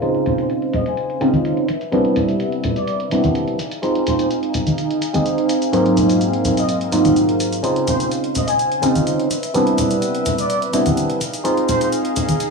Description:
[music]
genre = filtered disco house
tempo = 126 BPM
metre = 4/4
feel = straight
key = unclear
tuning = A4 = 436 Hz
[part]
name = clav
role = accompaniment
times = 0.0-12.5 s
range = Ab2 to Ab4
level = -18 LUFS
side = right 1 dB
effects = phaser, low-pass filter
[part]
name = rich chamber violin section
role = sustained chords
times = 0.0-12.5 s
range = C4 to F5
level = -26 LUFS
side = equal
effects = vintage 12-bit sampler grit, low-pass filter
[part]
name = electronic hi-hat and shaker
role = drums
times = 0.0-12.5 s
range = none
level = -30 LUFS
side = equal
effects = low-pass filter on hats, low-pass filter on snare, low-pass filter on cymbals, low-pass filter on perc, low-pass filter on room
[part]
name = egg shaker and congas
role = percussion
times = 0.0-12.5 s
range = none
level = -23 LUFS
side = left 2 dB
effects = low-pass filter on perc
[part]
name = mellow trumpet section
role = melody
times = 0.3-11.9 s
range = C5 to Ab5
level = -24 LUFS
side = left 1 dB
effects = vintage 12-bit sampler grit, low-pass filter, tape echo
[sound]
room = moderate plate reverb, RT60 1.3 s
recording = studio reverb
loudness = -16 LUFS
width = side -4 dB against mid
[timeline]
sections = 0.0-12.5 A section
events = filter sweep 0.0-12.5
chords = 0.0 Dbmaj7; 1.7 Cmaj7; 3.6 Fm7; 5.7 Ab13; 7.6 Dbmaj7; 9.3 Cmaj7; 11.2 Fm7

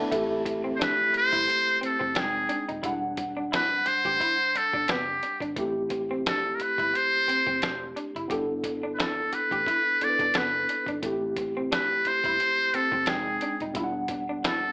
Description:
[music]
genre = R&B, neo-soul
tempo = 88 BPM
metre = 4/4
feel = swing 55% on 16ths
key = A dorian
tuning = A4 = 440 Hz
[part]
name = tine electric piano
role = accompaniment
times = 0.0-14.7 s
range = B2 to G5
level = -31 LUFS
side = equal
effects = overdrive, fast stereo tremolo
[part]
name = electric guitar through a small old amp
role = second line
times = 0.1-14.6 s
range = A3 to G4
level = -34 LUFS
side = equal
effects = none
[part]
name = vintage muted fingered electric bass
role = bass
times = 0.1-14.7 s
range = Eb1 to A1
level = -45 LUFS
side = equal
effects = none
[part]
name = boom bap sampler-style drum kit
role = drums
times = 0.1-14.6 s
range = hi-hat, kick drum, snare drum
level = -32 LUFS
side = equal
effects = none
[part]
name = trumpet with metal mute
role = melody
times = 0.8-14.7 s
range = G4 to D5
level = -24 LUFS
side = equal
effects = none
[sound]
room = moderate studio reverb, RT60 0.6 s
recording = AM radio sound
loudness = -24 LUFS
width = side -34 dB against mid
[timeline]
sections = 0.1-14.7 A section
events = none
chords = 0.1 Am7; 2.2 Fm9; 2.8 Em9; 5.6 Am7; 8.3 G69; 11.0 Am7; 13.1 Fm9; 13.8 Em9

